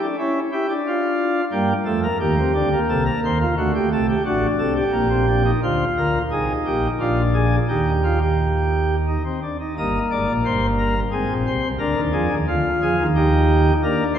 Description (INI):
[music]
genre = classical, baroque-style 3-part fugue for pipe organ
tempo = 88 BPM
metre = 3/4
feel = straight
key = G minor, Eb major from 5.6 s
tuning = A4 = 440 Hz
[part]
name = pipe organ, sparkling flutes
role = solo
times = 0.0-14.2 s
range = G1 to Eb5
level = -18 LUFS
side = equal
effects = none
[sound]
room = wet church reverb, RT60 2.6 s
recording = none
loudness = -18 LUFS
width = side -9 dB against mid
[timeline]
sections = 0.0-5.6 A section; 5.6-9.8 B section; 9.8-14.2 C section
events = none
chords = 0.0 A7/C# (rootless); 0.8 Dm; 1.5 Gm; 2.9 Cm; 3.6 D7; 4.9 Gm/Bb; 5.6 Bb/D; 6.3 Cm; 7.0 Bb; 7.7 Eb; 9.8 Eb/G; 11.1 Ab; 11.8 Bb7/D; 13.2 Eb